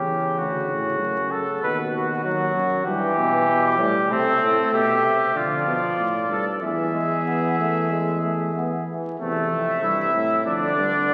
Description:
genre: classical, imitative canzona for brass ensemble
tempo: 95 BPM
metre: 4/4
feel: straight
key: A minor from 4.1 s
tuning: A4 = 440 Hz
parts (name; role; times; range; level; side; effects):
- warm trumpet; second line; 0.0-11.1 s; A3 to B4; -26 LUFS; equal; none
- clear trombone; accompaniment; 0.0-11.1 s; B2 to B3; -28 LUFS; equal; none
- mellow bass trombone; bass; 0.0-11.1 s; D2 to D3; -30 LUFS; equal; none
- clear cornet; melody; 4.1-11.1 s; A4 to E5; -28 LUFS; equal; none
room: wet concert hall reverb, RT60 2.2 s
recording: very old 78 rpm record, vinyl crackle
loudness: -22 LUFS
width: mono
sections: 0.0-9.2 A section; 9.2-11.1 B section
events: none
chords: 0.4 D; 1.6 B/D#; 2.9 Em/G; 4.1 Am; 5.4 Bdim (rootless); 6.6 E; 9.2 Am/E; 10.5 Fsus2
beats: 0.38 1.00 | 1.62 2.24 2.87 3.49 | 4.11 4.73 5.36 5.98 | 6.62 7.26 7.91 8.55 | 9.19 9.82 10.46 11.10

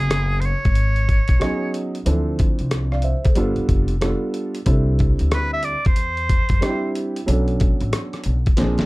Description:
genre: hip hop, jazz-hop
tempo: 92 BPM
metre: 4/4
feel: swing 63% on 16ths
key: unclear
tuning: A4 = 439 Hz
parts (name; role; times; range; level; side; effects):
- bright oboe; melody; 0.0-6.9 s; G#4 to E5; -24 LUFS; right 1 dB; none
- dark concert grand piano; accompaniment; 0.0-8.9 s; E3 to F5; -24 LUFS; right 2 dB; none
- upright bass; bass; 0.0-8.8 s; F1 to F#2; -21 LUFS; equal; none
- dusty soul sampler-style drum kit; drums; 0.1-8.9 s; hi-hat, kick drum, rim click, snare drum; -20 LUFS; equal; none
room: little or no reverb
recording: dark, warm production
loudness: -17 LUFS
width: side -21 dB against mid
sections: 0.0-8.9 A section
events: drum fill 8.6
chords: 0.0 Emaj13 (rootless); 2.1 Dm9; 3.4 G7; 4.7 C69; 7.3 Bm9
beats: 0.10 0.76 1.41 | 2.06 2.71 3.37 4.02 | 4.67 5.32 5.97 6.63 | 7.28 7.93 8.58

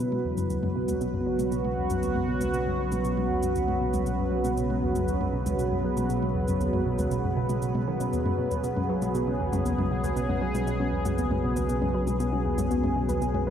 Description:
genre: ambient, sequencer-driven space music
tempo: 118 BPM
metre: 4/4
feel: straight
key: unclear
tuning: A4 = 440 Hz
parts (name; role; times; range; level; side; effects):
- sweeping resonant pad; sustained chords; 0.0-13.5 s; C#3 to B4; -27 LUFS; equal; chorus
- soft round pluck; arpeggios; 0.0-13.5 s; B3 to C#5; -37 LUFS; moving between left 5 dB and right 2 dB; none
- hollow square pluck; riff; 0.0-13.5 s; D#2 to F#3; -30 LUFS; right 1 dB; chorus, phaser, analog delay
- warm sub bass; bass; 0.0-13.5 s; B1; -34 LUFS; equal; none
- electronic toms and cabasa; percussion; 0.1-13.4 s; none; -37 LUFS; left 3 dB; analog delay
room: wet plate reverb, RT60 3.0 s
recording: dreamy mix soaked in reverb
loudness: -24 LUFS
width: side -9 dB against mid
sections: 0.0-13.5 A section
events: none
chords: 0.0 Bsus2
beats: | 0.00 0.50 1.01 1.52 | 2.03 2.54 3.05 3.56 | 4.06 4.57 5.08 5.59 | 6.10 6.61 7.11 7.62 | 8.13 8.64 9.15 9.66 | 10.16 10.67 11.18 11.69 | 12.20 12.71 13.22

